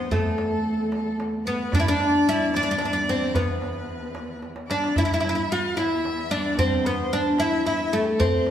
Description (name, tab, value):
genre	Arabic maqam ensemble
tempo	74 BPM (dotted quarters)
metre	6/8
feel	straight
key	E maqam bayati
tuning	A4 = 436 Hz
part	oud	melody	0.0-8.5 s	A3 to F#4-50c	-23 LUFS	equal	none
part	rich violin	second line	0.0-8.5 s	G4 to F#5-49c	-31 LUFS	left 2 dB	none
part	dark cello	drone	0.0-8.5 s	E2	-36 LUFS	equal	none
part	darbuka	percussion	0.1-8.5 s	none	-27 LUFS	right 1 dB	none
room	wet stone room reverb, RT60 1.3 s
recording	band playing live in one room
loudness	-21 LUFS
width	side -10 dB against mid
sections	0.0-8.5 A section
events	drum fill 4.4-5.0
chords	none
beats	| 0.11 0.92 | 1.73 2.54 | 3.35 4.16 | 4.96 5.77 | 6.58 7.39 | 8.20